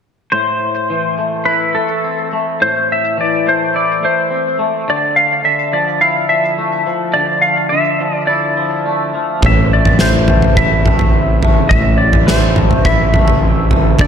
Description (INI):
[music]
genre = post-rock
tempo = 105 BPM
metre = 4/4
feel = straight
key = A minor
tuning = A4 = 440 Hz
[part]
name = clean lap steel guitar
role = melody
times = 0.3-14.1 s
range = A4 to F5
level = -15 LUFS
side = equal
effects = analog chorus, tape echo
[part]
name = twangy electric guitar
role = arpeggios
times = 0.3-14.1 s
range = A2 to E4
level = -18 LUFS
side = left 3 dB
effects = analog chorus, tape echo
[part]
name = fuzz fingered electric bass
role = bass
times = 9.4-14.1 s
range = A1 to D2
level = -14 LUFS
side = equal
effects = overdrive
[part]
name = huge arena drum kit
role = drums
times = 9.4-14.1 s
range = kick drum, snare drum, toms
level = -13 LUFS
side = right 1 dB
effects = none
[sound]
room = moderate plate reverb, RT60 2.2 s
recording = dreamy mix soaked in reverb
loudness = -11 LUFS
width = side -7 dB against mid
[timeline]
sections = 0.3-14.1 A section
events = none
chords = 0.3 Am; 4.9 Dmadd9; 9.4 Am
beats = | 0.32 0.89 1.46 2.03 | 2.60 3.17 3.74 4.31 | 4.88 5.45 6.01 6.58 | 7.15 7.72 8.29 8.86 | 9.43 10.00 10.57 11.14 | 11.71 12.28 12.85 13.43 | 14.00